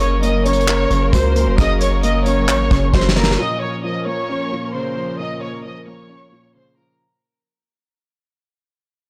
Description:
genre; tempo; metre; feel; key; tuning
hip hop, trap; 133 BPM; 4/4; half-time; Bb minor; A4 = 440 Hz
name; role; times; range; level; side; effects
warm studio violin section; melody; 0.0-7.0 s; Bb4 to Eb6; -24 LUFS; equal; low-pass filter
dark grand piano; accompaniment; 0.0-7.0 s; Bb2 to Db5; -25 LUFS; equal; low-pass filter
dark studio string section; sustained chords; 0.0-7.0 s; F3 to Bb4; -29 LUFS; equal; none
long sustained 808-style bass; bass; 0.0-3.4 s; F1 to Db2; -21 LUFS; equal; none
soft brush drum kit; drums; 0.0-3.4 s; handclaps, hi-hat, kick drum, snare drum; -21 LUFS; equal; none
room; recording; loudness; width
small room ambience; blown-out, overdriven recording, overdrive; -17 LUFS; mono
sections
0.0-3.4 A section; 3.4-7.0 B section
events
drum fill 2.9-3.4; fade-out 3.4-7.0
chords
0.0 Gb; 3.4 Bbm

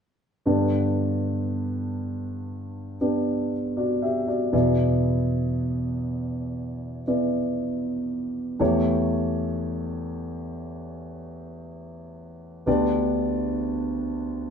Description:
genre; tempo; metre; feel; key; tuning
pop; 59 BPM; 4/4; straight; G major; A4 = 444 Hz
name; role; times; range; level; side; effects
warm concert grand piano; accompaniment; 0.5-14.5 s; D2 to E5; -24 LUFS; equal; none
room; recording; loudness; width
wet studio reverb, RT60 0.7 s; band playing live in one room; -23 LUFS; side -7 dB against mid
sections
0.5-14.5 A section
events
none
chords
0.5 G; 4.5 E7; 8.6 A7/E; 12.7 G/D

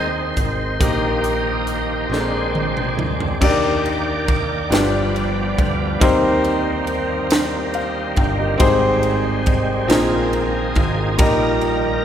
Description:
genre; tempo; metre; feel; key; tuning
slow gospel; 46 BPM (dotted quarters); 6/8; straight; Eb major; A4 = 438 Hz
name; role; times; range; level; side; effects
warm concert grand piano; accompaniment; 0.0-12.0 s; G2 to G5; -20 LUFS; left 1 dB; none
bright tonewheel organ; sustained chords; 0.0-12.0 s; Eb3 to D5; -23 LUFS; right 1 dB; overdrive, chorus vibrato, slow rotary speaker
fingered electric bass; bass; 0.0-12.0 s; G1 to Eb2; -24 LUFS; equal; none
crisp fusion drum kit; drums; 0.4-11.8 s; crash cymbal, hi-hat, kick drum, ride cymbal, snare drum, toms; -22 LUFS; equal; none
room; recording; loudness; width
wet cathedral reverb, RT60 4.6 s; recorded in a church or concert hall; -16 LUFS; side -9 dB against mid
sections
0.0-3.4 A section; 3.4-12.0 B section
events
tonewheel organ solo 0.0-3.4; drum fill 2.1-3.4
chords
0.0 Ab/Eb; 0.8 Eb/Bb; 2.1 Bb9; 3.4 Ebmaj7; 4.7 G7; 6.0 Cm7/Eb; 8.6 Abmaj7; 9.9 Bb9sus4; 11.2 Eb/Bb

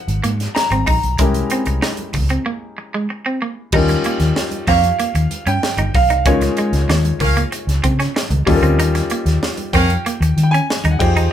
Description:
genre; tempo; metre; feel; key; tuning
polished 1980s jazz-funk pop; 95 BPM; 4/4; straight; unclear; A4 = 440 Hz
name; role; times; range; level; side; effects
clear grand piano; melody; 0.0-11.3 s; Db5 to Bb5; -21 LUFS; right 3 dB; none
warm baby grand piano; accompaniment; 0.0-11.3 s; F3 to C5; -22 LUFS; left 4 dB; none
vintage muted fingered electric bass; bass; 0.1-11.3 s; G1 to Eb3; -17 LUFS; equal; none
crisp fusion drum kit; drums; 0.1-11.3 s; crash cymbal, hi-hat, kick drum, snare drum; -21 LUFS; equal; none
congas; percussion; 0.1-11.0 s; none; -34 LUFS; right 3 dB; none
electric guitar at the edge of break-up; riff; 0.2-11.3 s; Ab3 to Eb4; -22 LUFS; right 2 dB; none
warm horn section; second line; 4.7-9.9 s; Bb3 to F5; -20 LUFS; equal; none
room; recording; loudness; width
moderate studio reverb, RT60 0.5 s; band playing live in one room; -14 LUFS; side -10 dB against mid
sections
0.0-3.7 A section; 3.7-11.3 B section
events
break 2.5-3.7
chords
0.0 Ab13; 1.2 C7b9b13; 3.7 Eb9; 6.3 Db6; 8.5 Eb9

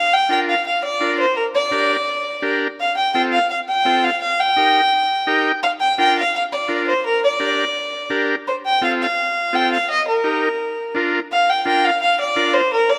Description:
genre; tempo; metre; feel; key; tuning
latin; 169 BPM; 4/4; straight; Bb major; A4 = 438 Hz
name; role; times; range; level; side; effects
warm fiddle; melody; 0.0-13.0 s; Bb4 to G5; -19 LUFS; equal; none
combo organ; accompaniment; 0.3-12.6 s; C4 to G5; -24 LUFS; equal; none
room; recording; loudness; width
moderate plate reverb, RT60 2.6 s; none; -18 LUFS; mono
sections
0.0-11.3 A section; 11.3-13.0 A section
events
transistor combo organ fill 5.1-5.6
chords
0.0 Bb; 1.4 Gm; 2.8 F; 4.2 Eb; 5.6 Bb; 7.0 Gm; 8.5 F; 9.9 Eb; 10.6 Bb

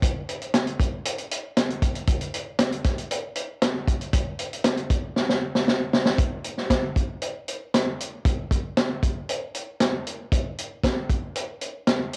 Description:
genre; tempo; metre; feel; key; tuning
rock; 116 BPM; 4/4; straight; none; none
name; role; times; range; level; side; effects
vintage drum kit; drums; 0.0-12.2 s; hi-hat, kick drum, snare drum; -25 LUFS; equal; cassette tape
room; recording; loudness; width
wet booth ambience, RT60 0.2 s; home recording on cassette; -26 LUFS; mono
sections
0.0-6.2 A section; 6.2-12.2 B section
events
drum fill 5.2-6.2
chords
none

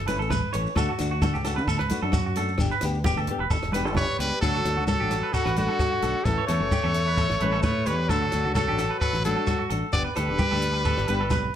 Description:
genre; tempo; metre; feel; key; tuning
highlife guitar band; 131 BPM; 4/4; straight; D major; A4 = 442 Hz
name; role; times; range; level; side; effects
clean electric guitar; arpeggios; 0.0-11.5 s; F#4 to C#5; -30 LUFS; right 4 dB; slapback echo
fingered electric bass; bass; 0.0-11.5 s; E1 to D3; -28 LUFS; equal; none
flamenco guitar; accompaniment; 0.1-11.3 s; E3 to G4; -33 LUFS; left 5 dB; none
compact cocktail drum kit; drums; 0.1-11.4 s; hi-hat, kick drum, rim click; -30 LUFS; equal; none
congas; percussion; 0.1-11.4 s; none; -32 LUFS; equal; none
shekere; percussion; 0.1-11.4 s; none; -33 LUFS; left 1 dB; none
brilliant trumpet; melody; 4.0-11.5 s; F#4 to D5; -27 LUFS; right 1 dB; slapback echo
raspy tenor saxophone; second line; 4.0-11.5 s; D3 to B3; -33 LUFS; left 7 dB; none
room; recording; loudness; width
light reverb; none; -22 LUFS; side -10 dB against mid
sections
0.0-4.4 A section; 4.4-11.6 B section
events
none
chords
0.0 A; 0.8 D; 2.6 G; 4.4 D; 6.3 A; 8.1 D; 9.9 G

